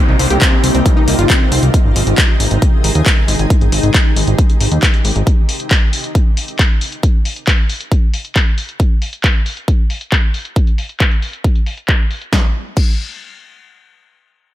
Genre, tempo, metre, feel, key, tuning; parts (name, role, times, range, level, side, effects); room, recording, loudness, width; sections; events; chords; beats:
uplifting trance; 136 BPM; 4/4; straight; A4 = 440 Hz
shimmering ambient pad; sustained chords; 0.0-5.2 s; C3 to Ab4; -20 LUFS; equal; chorus, built-in reverb, sidechain pumping
wide unison pluck; arpeggios; 0.0-1.6 s; G3 to C5; -20 LUFS; left 2 dB; sidechain pumping, dub echo
downlifter; sound effects; 0.0-1.7 s; -26 LUFS; right 1 dB
plucky analog bass; bass; 0.1-5.2 s; G1 to Eb2; -14 LUFS; equal; sidechain pumping
punchy analog drum machine; drums; 0.2-12.9 s; crash cymbal, handclaps, hi-hat, snare drum; -18 LUFS; left 1 dB; low-pass filter on hats, low-pass filter on cymbals, low-pass filter on snare, low-pass filter on room
electronic kick drum; drums; 0.4-12.9 s; -12 LUFS; equal
little or no reverb; -12 LUFS; side -13 dB against mid
0.0-12.3 A section; 12.3-14.5 B section
0.0 Cm7; 1.7 Ab; 5.3 N.C.
0.41 0.86 1.30 | 1.74 2.18 2.62 3.06 | 3.50 3.94 4.38 4.83 | 5.27 5.71 6.15 6.59 | 7.03 7.47 7.92 8.36 | 8.80 9.24 9.68 10.12 | 10.56 11.00 11.44 11.88 | 12.33 12.77